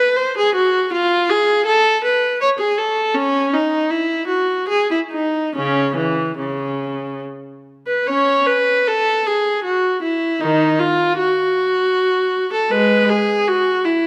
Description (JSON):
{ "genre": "classical, baroque-style suite movement for unaccompanied viola", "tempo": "70-81 BPM", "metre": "3/4", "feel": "rubato", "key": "C# minor", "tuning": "A4 = 440 Hz", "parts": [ { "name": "rich viola", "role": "solo", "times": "0.0-14.1 s", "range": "C#3 to C#5", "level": "-18 LUFS", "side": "equal", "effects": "none" } ], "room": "moderate recital hall reverb, RT60 1.6 s", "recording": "none", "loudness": "-18 LUFS", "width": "mono", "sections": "0.0-8.1 A section; 8.1-14.1 B section", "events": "none", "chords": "none" }